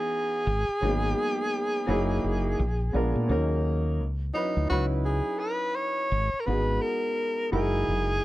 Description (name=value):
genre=R&B, neo-soul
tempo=85 BPM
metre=4/4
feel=swing 61% on 16ths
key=C# dorian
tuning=A4 = 436 Hz
part: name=breathy tenor saxophone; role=melody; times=0.0-8.2 s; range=D#4 to C#5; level=-29 LUFS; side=equal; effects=none
part: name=warm upright piano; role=accompaniment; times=0.0-8.2 s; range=E3 to B4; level=-30 LUFS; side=equal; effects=none
part: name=woody fretless electric bass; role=bass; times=0.5-8.2 s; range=F#1 to A#2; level=-27 LUFS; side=equal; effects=none
room=little or no reverb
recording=dry, close 1970s-style studio recording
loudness=-24 LUFS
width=side -16 dB against mid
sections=0.0-4.7 A section; 4.7-8.2 A section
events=none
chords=0.5 G#m7; 1.9 F#13; 2.6 A#7b9; 3.3 D#m7; 4.0 C#m11; 6.1 G#m7; 7.5 F#13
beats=0.45 1.16 | 1.86 2.57 3.28 3.98 | 4.69 5.39 6.10 6.81 | 7.51 8.22